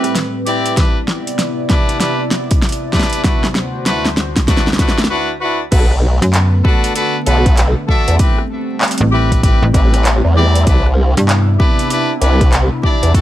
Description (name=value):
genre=glitch hop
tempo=97 BPM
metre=4/4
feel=swing 63% on 16ths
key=unclear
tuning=A4 = 440 Hz
part: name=warbly tape-like pad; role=sustained chords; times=0.0-13.2 s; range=D2 to D5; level=-22 LUFS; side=equal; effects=chorus, built-in reverb, phaser, vintage 12-bit sampler grit, sidechain pumping
part: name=brilliant horn section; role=stabs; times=0.0-13.2 s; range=C4 to E5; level=-19 LUFS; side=left 2 dB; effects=vintage 12-bit sampler grit, sidechain pumping, dub echo
part: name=pop drum kit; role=drums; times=0.0-13.2 s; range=crash cymbal, handclaps, hi-hat, rim click, snare drum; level=-18 LUFS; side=equal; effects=none
part: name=electronic kick drum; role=drums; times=0.8-13.2 s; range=none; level=-14 LUFS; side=equal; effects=none
part: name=formant-sweep wobble bass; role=bass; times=5.7-13.1 s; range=A1 to E2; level=-12 LUFS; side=equal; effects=chorus, overdrive
part: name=slap-like FM bass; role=bass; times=6.2-11.6 s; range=A1 to G2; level=-12 LUFS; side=equal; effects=none
room=light reverb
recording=vinyl crackle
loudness=-12 LUFS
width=side -13 dB against mid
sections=0.0-5.7 A section; 5.7-13.2 B section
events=build-up 0.0-5.7; drum fill 0.0-5.1; break 5.1-5.7; drop 5.7-13.2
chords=0.0 Am9; 0.8 Cmaj9; 3.2 D7; 5.7 Bm7; 8.2 Am9; 10.7 Cmaj9